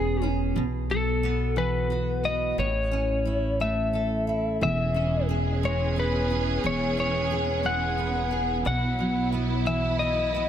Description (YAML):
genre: pop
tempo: 59 BPM (dotted quarters)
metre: 6/8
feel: straight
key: E major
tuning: A4 = 438 Hz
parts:
  - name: lightly driven lead guitar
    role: melody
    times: 0.0-10.5 s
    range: G#4 to F#5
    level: -28 LUFS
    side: left 2 dB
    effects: digital delay
  - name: picked steel-string acoustic guitar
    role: accompaniment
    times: 0.0-10.5 s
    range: A2 to B4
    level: -29 LUFS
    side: right 1 dB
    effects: double-tracked left and right
  - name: upright bass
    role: bass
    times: 0.0-10.5 s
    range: E1 to B1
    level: -29 LUFS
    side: equal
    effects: none
  - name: warm studio string section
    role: sustained chords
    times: 4.6-10.5 s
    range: E3 to G#4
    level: -30 LUFS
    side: right 3 dB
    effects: none
room: light reverb, small room ambience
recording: none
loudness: -23 LUFS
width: side -10 dB against mid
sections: 0.0-10.5 A section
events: none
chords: 0.0 E6; 0.6 Bsus4; 2.6 A; 4.6 E6; 8.7 Bsus4